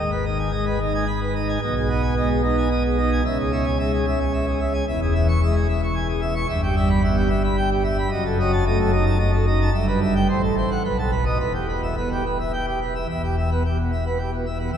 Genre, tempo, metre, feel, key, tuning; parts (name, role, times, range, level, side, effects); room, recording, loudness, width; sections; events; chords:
classical, organ toccata; 111 BPM; 3/4; straight; G# minor, E minor from 6.5 s; A4 = 437 Hz
pipe organ, plenum; solo; 0.0-14.8 s; E1 to C#6; -19 LUFS; equal
wet cathedral reverb, RT60 6.2 s; heard from further back in the room; -19 LUFS; side -8 dB against mid
0.0-13.1 A section; 13.1-14.8 B section
0.0 G#m; 1.6 G#m/B; 3.3 C#m; 4.9 C#m/E; 6.5 Em/G; 8.1 D#dim/F#; 9.7 Em/G; 10.3 F#dim/A; 10.8 B7; 11.4 Em